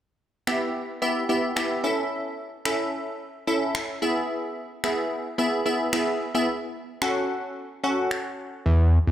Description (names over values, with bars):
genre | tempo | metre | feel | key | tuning
dance-pop | 110 BPM | 4/4 | straight | unclear | A4 = 441 Hz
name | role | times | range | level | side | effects
wavetable chord stab | accompaniment | 0.5-8.7 s | B3 to F#5 | -25 LUFS | equal | none
electronic finger snaps | drums | 0.5-8.2 s | none | -33 LUFS | equal | none
fat analog bass | bass | 8.7-9.1 s | E2 | -16 LUFS | equal | none
room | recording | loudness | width
moderate plate reverb, RT60 2.2 s | played on a big sound system in a bare room, large studio reverb | -24 LUFS | side -11 dB against mid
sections
0.0-9.1 A section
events
none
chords
0.0 Em; 1.8 A; 4.0 E; 6.5 F#m